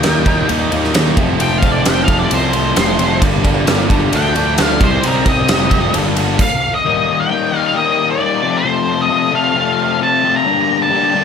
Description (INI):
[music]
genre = quiet-loud alternative rock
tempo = 132 BPM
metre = 4/4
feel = straight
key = unclear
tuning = A4 = 440 Hz
[part]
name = octave-fuzz lead guitar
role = melody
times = 0.0-11.2 s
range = Bb4 to Bb5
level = -17 LUFS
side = equal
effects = distortion
[part]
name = fuzz guitar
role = riff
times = 0.0-11.2 s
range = F2 to Eb4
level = -18 LUFS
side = left 11 dB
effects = distortion
[part]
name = tight distorted guitar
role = riff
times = 0.0-6.4 s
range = F2 to Eb4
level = -20 LUFS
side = right 11 dB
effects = distortion
[part]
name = fuzz picked electric bass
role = bass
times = 0.0-6.4 s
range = F1 to Eb2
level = -19 LUFS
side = right 1 dB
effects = overdrive
[part]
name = big rock drum kit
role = drums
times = 0.0-6.5 s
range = crash cymbal, kick drum, ride cymbal, snare drum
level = -16 LUFS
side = right 1 dB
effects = none
[part]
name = clear symphonic string section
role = sustained chords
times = 6.8-11.2 s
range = Eb4 to A5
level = -26 LUFS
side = left 1 dB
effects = none
[sound]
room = studio reverb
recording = none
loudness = -12 LUFS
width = side -7 dB against mid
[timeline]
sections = 0.0-6.9 A section; 6.9-11.2 B section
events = lead electric guitar solo 0.0-6.9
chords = 0.0 Eb; 1.2 F; 3.2 Gm; 4.1 Dm; 4.8 Cm; 6.0 Gm; 6.9 Eb; 8.4 F; 10.5 Gmadd9